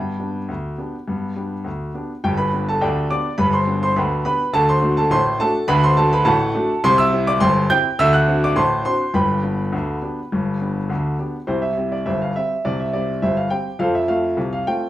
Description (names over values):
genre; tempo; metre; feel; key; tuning
ragtime piano; 104 BPM; 2/4; straight; G major, C major from 6.8 s; A4 = 440 Hz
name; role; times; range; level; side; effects
warm grand piano; solo; 0.0-14.9 s; G1 to G6; -17 LUFS; equal; none
room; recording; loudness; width
wet studio reverb, RT60 0.6 s; heard from further back in the room; -17 LUFS; side -14 dB against mid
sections
0.0-2.2 A section; 2.2-11.5 B section; 11.5-14.9 C section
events
none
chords
0.0 G; 4.5 D7; 6.8 C; 8.0 D7; 9.1 G; 11.5 C; 13.8 F